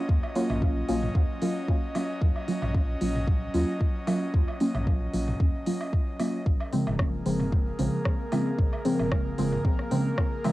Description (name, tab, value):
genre	dub techno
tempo	113 BPM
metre	4/4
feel	swing 54% on 16ths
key	unclear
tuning	A4 = 440 Hz
part	airy breathy pad	sustained chords	0.0-10.5 s	Gb3 to Eb5	-35 LUFS	equal	chorus, sidechain pumping, cassette tape
part	soft dub sub bass	bass	0.1-9.8 s	F1 to Eb2	-32 LUFS	equal	sidechain pumping
part	electronic kick drum	drums	0.1-10.3 s	none	-25 LUFS	equal	cassette tape
part	electronic woodblock and toms	percussion	0.2-10.5 s	none	-37 LUFS	right 1 dB	overdrive, sidechain pumping on perc, cassette tape, sidechain pumping on toms, dub echo
part	deep mellow chord stab	stabs	0.4-10.5 s	Db3 to F4	-28 LUFS	equal	chorus, phaser, sidechain pumping, cassette tape, dub echo
part	deep house drum kit	drums	0.4-10.5 s	hi-hat, rim click	-39 LUFS	equal	cassette tape
part	bubbling stepped-filter texture	texture	7.2-10.5 s	Bb3 to Bb4	-42 LUFS	right 2 dB	none
room	light reverb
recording	home recording on cassette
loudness	-24 LUFS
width	side -17 dB against mid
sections	0.0-10.5 A section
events	none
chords	0.0 Ebm7; 6.5 Bbm7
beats	| 0.09 0.62 1.15 1.68 | 2.21 2.75 3.28 3.81 | 4.34 4.87 5.40 5.93 | 6.46 6.99 7.52 8.05 | 8.59 9.12 9.65 10.18